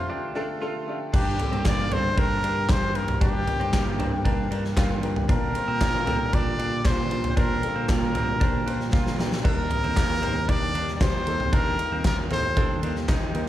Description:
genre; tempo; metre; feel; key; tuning
piano-driven pop; 116 BPM; 4/4; straight; G minor; A4 = 444 Hz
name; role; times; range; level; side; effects
clear trumpet; melody; 0.0-12.8 s; F4 to D5; -28 LUFS; equal; slapback echo
bright upright piano; accompaniment; 0.0-13.5 s; G2 to Bb5; -33 LUFS; left 3 dB; slapback echo
warm analog pad; sustained chords; 0.0-13.5 s; D3 to G4; -37 LUFS; equal; none
bell-like tine electric piano; bass; 0.0-13.5 s; Eb2 to Bb2; -29 LUFS; right 1 dB; medium stereo tremolo
twelve-string electric guitar; riff; 0.1-13.5 s; Bb3 to F4; -36 LUFS; right 6 dB; slapback echo
huge arena drum kit; drums; 1.1-13.5 s; crash cymbal, handclaps, kick drum, ride cymbal, snare drum, splash cymbal, toms; -25 LUFS; equal; none
room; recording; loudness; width
studio reverb; live gig heard through the venue's PA, club reverb; -22 LUFS; side -13 dB against mid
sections
0.0-1.1 A section; 1.1-13.5 B section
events
upright piano fill 0.0-1.1; break 0.1-1.1; drum fill 8.9-9.4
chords
0.0 Dm; 1.1 Gm; 5.3 Bb6; 9.4 Eb

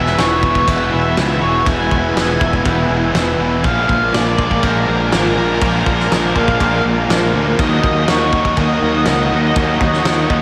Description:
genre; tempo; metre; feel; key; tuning
rock, shoegaze and dream pop; 122 BPM; 4/4; straight; E lydian; A4 = 440 Hz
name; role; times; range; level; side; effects
octave-fuzz lead guitar; melody; 0.0-10.4 s; A#4 to G#5; -23 LUFS; equal; distortion, diffuse ambient delay
sweeping resonant pad; sustained chords; 0.0-10.4 s; A#4 to E6; -25 LUFS; equal; chorus
direct-recorded clean electric guitar; arpeggios; 0.0-10.4 s; E3 to G#4; -29 LUFS; equal; none
biting overdriven guitar; riff; 0.0-10.4 s; E2 to F#4; -25 LUFS; equal; reverse reverb
crunchy overdriven guitar; riff; 0.0-10.4 s; E2 to D#4; -25 LUFS; equal; none
thick fuzz guitar; riff; 0.0-10.4 s; E2 to D#4; -25 LUFS; equal; distortion, lush chorus
growling fingered electric bass; bass; 0.0-10.4 s; E1 to D#2; -23 LUFS; equal; overdrive
loose indie drum kit; drums; 0.1-10.4 s; crash cymbal, kick drum, snare drum; -22 LUFS; equal; none
room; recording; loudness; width
wet lush hall reverb, RT60 1.8 s, studio ambience; dreamy mix soaked in reverb; -15 LUFS; mono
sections
0.0-10.4 A section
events
none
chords
0.0 E; 3.6 A#7; 7.6 D#m

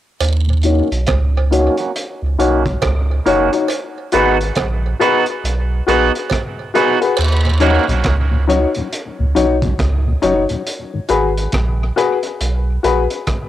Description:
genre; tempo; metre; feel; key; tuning
dub reggae; 69 BPM; 4/4; swing 62% on 16ths; Eb minor; A4 = 441 Hz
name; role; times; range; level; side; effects
warm sub bass; bass; 0.2-13.1 s; Gb1 to Eb2; -16 LUFS; right 1 dB; none
crunchy breakbeat drum kit; drums; 0.2-13.5 s; crash cymbal, hi-hat, kick drum, rim click; -23 LUFS; right 1 dB; cassette tape
cowbell and jawbone-type rattle; percussion; 0.2-7.4 s; none; -25 LUFS; right 8 dB; tape echo
mellow tonewheel organ; accompaniment; 0.5, 7.4-11.0 s; Eb2 to Eb4; -24 LUFS; left 4 dB; chorus vibrato, slow rotary speaker, low-pass filter, cassette tape, tape echo
electric guitar at the edge of break-up; accompaniment; 0.6-7.8 s; Bb3 to Gb4; -20 LUFS; right 7 dB; low-pass filter, cassette tape, tape echo
dark upright piano; stabs; 0.6-13.0 s; Eb4 to Db5; -18 LUFS; left 4 dB; low-pass filter, cassette tape, tape echo
room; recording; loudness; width
light reverb, small room ambience; home recording on cassette; -14 LUFS; side -12 dB against mid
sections
0.2-7.2 A section; 7.2-13.5 B section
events
filter sweep 0.2-7.2; part muted 7.2-13.5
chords
0.2 Ebm7; 3.7 Abm7; 7.2 Ebm7; 10.7 Abm7

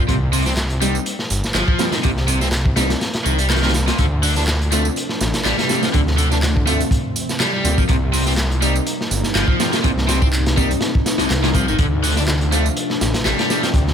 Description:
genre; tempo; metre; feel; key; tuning
breakbeat, breaks; 123 BPM; 4/4; swing 55% on 16ths; unclear; A4 = 440 Hz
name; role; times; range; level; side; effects
overdriven electric guitar; riff; 0.0-13.7 s; Bb2 to D4; -22 LUFS; left 1 dB; vintage 12-bit sampler grit, ping-pong delay
orchestra-hit-like synth stab; stabs; 0.0-13.9 s; G3 to G4; -26 LUFS; equal; built-in reverb, ping-pong delay
detuned saw bass; bass; 0.1-13.9 s; G1 to D2; -20 LUFS; equal; none
crunchy breakbeat drum kit; drums; 0.1-13.9 s; hi-hat, kick drum, snare drum; -20 LUFS; equal; none
electronic tambourine and handclaps; drums; 0.1-13.8 s; none; -26 LUFS; right 3 dB; overdrive
warbly tape-like pad; sustained chords; 4.5-13.9 s; C3 to Eb4; -26 LUFS; equal; chorus, built-in reverb, phaser, vintage 12-bit sampler grit, sidechain pumping
room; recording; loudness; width
studio ambience; none; -16 LUFS; side -8 dB against mid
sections
0.0-13.9 A section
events
kick drops out 3.0-4.0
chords
0.1 Cm7; 4.0 Dm7; 7.9 Cm7; 11.8 Dm7

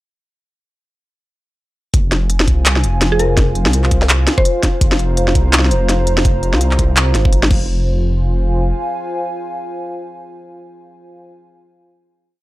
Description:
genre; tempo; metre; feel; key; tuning
half-time drum and bass; 167 BPM; 4/4; swing 58% on 16ths, half-time; F minor; A4 = 441 Hz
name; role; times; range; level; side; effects
dark analog pad; sustained chords; 2.3-11.3 s; F4 to Bb5; -24 LUFS; equal; chorus, sidechain pumping
dark detuned saw bass; bass; 1.9-8.7 s; F1 to C2; -15 LUFS; equal; none
electronic kick drum; drums; 1.9-7.6 s; none; -15 LUFS; equal; overdrive
industrial drum kit; drums; 1.9-7.6 s; crash cymbal, handclaps, hi-hat, snare drum; -16 LUFS; equal; none
mallet-like synth pluck; melody; 3.1-4.6 s; Ab4 to C5; -21 LUFS; equal; chorus, cassette tape, tape echo
pulsing gated texture; texture; 5.1-7.7 s; C5; -25 LUFS; right 3 dB; chorus, built-in reverb
room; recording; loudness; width
little or no reverb; dry, gritty hardware recording; -12 LUFS; side -17 dB against mid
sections
1.9-7.7 drop; 7.7-10.6 final chord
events
drop 1.9-7.7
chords
1.9 Fm; 7.5 F5; 7.7 Fm

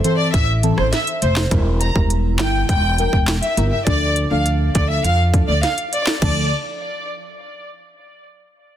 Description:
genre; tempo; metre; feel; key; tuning
dancehall; 102 BPM; 4/4; straight; D minor; A4 = 440 Hz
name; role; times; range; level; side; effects
warm studio violin section; melody; 0.0-6.5 s; C5 to Bb5; -22 LUFS; equal; tape echo
deep mellow chord stab; accompaniment; 0.0-6.4 s; E3 to Bb4; -24 LUFS; equal; chorus, phaser
island pop drum kit; drums; 0.0-6.4 s; crash cymbal, handclaps, hi-hat, kick drum, rim click, snare drum; -21 LUFS; equal; overdrive
upright bass; bass; 0.3-6.5 s; E1 to F2; -19 LUFS; equal; none
room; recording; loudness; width
light reverb; dense, heavily limited modern master; -16 LUFS; side -11 dB against mid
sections
0.0-1.5 A section; 1.5-6.2 B section; 6.2-8.6 C section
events
none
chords
0.0 Am; 1.5 Edim; 3.9 Dm

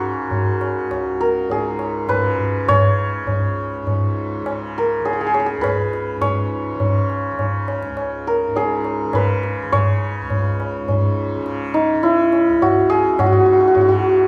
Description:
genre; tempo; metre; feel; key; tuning
indian classical, Hindustani; 103 BPM; 3/4; straight; C# raga bhimpalasi; A4 = 444 Hz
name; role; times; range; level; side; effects
santur; melody; 0.0-14.3 s; D#4 to C#5; -20 LUFS; equal; none
tanpura; drone; 0.0-14.3 s; C#2 to C#3; -28 LUFS; equal; none
tabla; percussion; 0.3-14.0 s; none; -24 LUFS; equal; none
room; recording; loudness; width
wet large studio reverb, RT60 0.9 s; band playing live in one room; -19 LUFS; mono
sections
0.0-13.2 A section; 13.2-14.3 B section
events
speeding up 0.0-14.3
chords
none

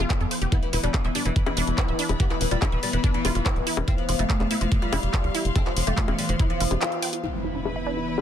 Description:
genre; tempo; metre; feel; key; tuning
psychedelic trance; 143 BPM; 4/4; straight; E phrygian; A4 = 435 Hz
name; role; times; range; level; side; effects
evolving wavetable pad; sustained chords; 0.0-8.2 s; E3 to B3; -32 LUFS; left 1 dB; phaser, built-in reverb, sidechain pumping
wide unison pluck; riff; 0.0-8.2 s; D4 to G5; -32 LUFS; moving between left 1 dB and right 5 dB; auto-pan, sidechain pumping, tape echo
tight sequencer bass; bass; 0.0-6.8 s; D1 to F2; -26 LUFS; equal; none
drum and bass drum kit; drums; 0.0-8.2 s; bongos, handclaps, hi-hat; -29 LUFS; left 3 dB; low-pass filter on hats, low-pass filter on cymbals, soft clipping on snare, low-pass filter on snare, low-pass filter on perc, low-pass filter on room
rich studio string section; texture; 0.0-8.2 s; E4 to C6; -36 LUFS; left 4 dB; sidechain pumping
electronic kick drum; drums; 0.1-6.5 s; none; -24 LUFS; equal; none
oud; melody; 0.5-7.2 s; E3 to C4; -30 LUFS; left 2 dB; phaser, vintage 12-bit sampler grit, sidechain pumping, ping-pong delay
impact; sound effects; 7.2-8.2 s; none; -32 LUFS; equal; none
room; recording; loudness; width
little or no reverb; dense, heavily limited modern master; -22 LUFS; side -10 dB against mid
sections
0.0-7.2 A section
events
filter sweep on synth arpeggio sound 0.0-7.2; break 6.8-7.2; band accent 6.8; impact 7.2-8.2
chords
0.0 F5; 0.5 E5; 3.9 F5; 7.2 E5

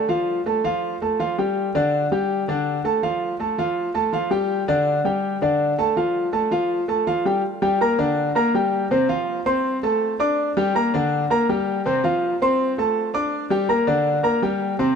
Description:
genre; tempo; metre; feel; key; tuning
latin; 163 BPM; 4/4; straight; G minor; A4 = 439 Hz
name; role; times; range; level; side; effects
clear concert grand piano; solo; 0.0-14.9 s; C3 to D6; -19 LUFS; equal; none
room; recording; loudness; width
moderate plate reverb, RT60 3.7 s; none; -19 LUFS; side -6 dB against mid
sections
0.0-7.4 A section; 7.4-15.0 B section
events
none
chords
0.1 F; 1.6 G5; 3.0 F; 4.5 G5; 6.0 F; 7.4 Gm; 8.9 F; 10.4 Gm; 11.9 F; 13.3 Gm

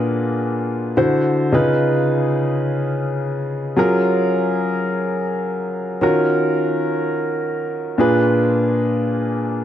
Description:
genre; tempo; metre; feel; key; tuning
pop; free time; none; none; Eb minor; A4 = 438 Hz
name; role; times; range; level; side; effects
warm concert grand piano; solo; 0.0-9.6 s; Bb2 to C5; -17 LUFS; equal; wide subtle chorus
room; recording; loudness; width
small room ambience; dry, close 1970s-style studio recording; -17 LUFS; side -10 dB against mid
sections
0.0-9.6 A section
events
none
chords
0.0 Bb7b9; 1.0 D9; 1.5 Db9; 3.8 Gbmaj7; 6.0 Ebm9; 8.0 Bb7b9

